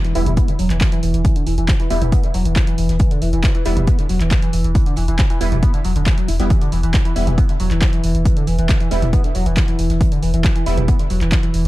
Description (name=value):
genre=driving peak-time techno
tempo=137 BPM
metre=4/4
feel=straight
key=E minor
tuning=A4 = 440 Hz
part: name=overdriven synth lead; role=riff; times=0.0-11.7 s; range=D3 to E4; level=-22 LUFS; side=equal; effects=lush chorus, sidechain pumping, digital delay
part: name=punchy analog drum machine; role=drums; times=0.0-11.7 s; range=handclaps, hi-hat, toms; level=-26 LUFS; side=equal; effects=sidechain pumping on cymbals, sidechain pumping on hats, sidechain pumping on toms
part: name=impact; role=sound effects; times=0.0-1.2 s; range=none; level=barely audible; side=none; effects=none
part: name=rave stab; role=stabs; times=0.2-10.8 s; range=G3 to E4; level=-27 LUFS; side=right 3 dB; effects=chorus, built-in reverb, sidechain pumping, digital delay
part: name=warm sub bass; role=bass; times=0.2-11.7 s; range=E1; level=-19 LUFS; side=equal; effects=tube saturation, sidechain pumping, low-pass filter
part: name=jazz brush drum kit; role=drums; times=0.2-11.6 s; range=hi-hat, snare drum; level=-36 LUFS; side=right 2 dB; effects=none
part: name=electronic kick drum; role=drums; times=0.4-11.4 s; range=none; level=-16 LUFS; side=equal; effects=overdrive
room=little or no reverb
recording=dark, warm production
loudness=-14 LUFS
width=side -17 dB against mid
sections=0.0-11.7 A section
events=impact 0.0-1.2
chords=0.0 Em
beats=0.37 0.81 | 1.25 1.69 2.12 2.56 | 3.00 3.44 3.88 4.31 | 4.75 5.19 5.63 6.07 | 6.50 6.94 7.38 7.82 | 8.25 8.69 9.13 9.57 | 10.01 10.44 10.88 11.32